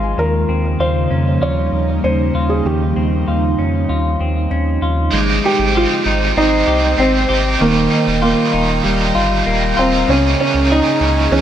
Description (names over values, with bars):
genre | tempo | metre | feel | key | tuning
dream pop | 97 BPM | 4/4 | straight | Ab major | A4 = 438 Hz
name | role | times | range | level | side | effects
felt-muted upright piano | melody | 0.0-11.4 s | Bb3 to Ab5 | -18 LUFS | right 2 dB | low-pass filter, digital delay
ethereal airy pad | sustained chords | 0.0-11.4 s | Db3 to Bb5 | -22 LUFS | right 1 dB | ensemble chorus, built-in reverb, low-pass filter
semi-hollow electric guitar | arpeggios | 0.0-11.4 s | Ab2 to Ab4 | -19 LUFS | left 2 dB | wide subtle chorus, low-pass filter, digital delay
saturated sub bass | bass | 0.0-11.4 s | Eb1 to F2 | -19 LUFS | equal | none
overdriven electric guitar | accompaniment | 5.1-11.4 s | Db3 to Ab4 | -19 LUFS | right 4 dB | tremolo, wide subtle chorus
room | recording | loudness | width
moderate plate reverb, RT60 2.7 s | none | -13 LUFS | side -10 dB against mid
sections
0.0-5.1 A section; 5.1-11.4 B section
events
none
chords
0.2 Eb13; 5.1 Abmaj7; 7.6 Ebadd9; 10.1 Dbm6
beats
| 0.18 0.80 1.42 2.04 | 2.66 3.27 3.89 4.51 | 5.13 5.75 6.37 6.99 | 7.60 8.22 8.84 9.46 | 10.08 10.70 11.31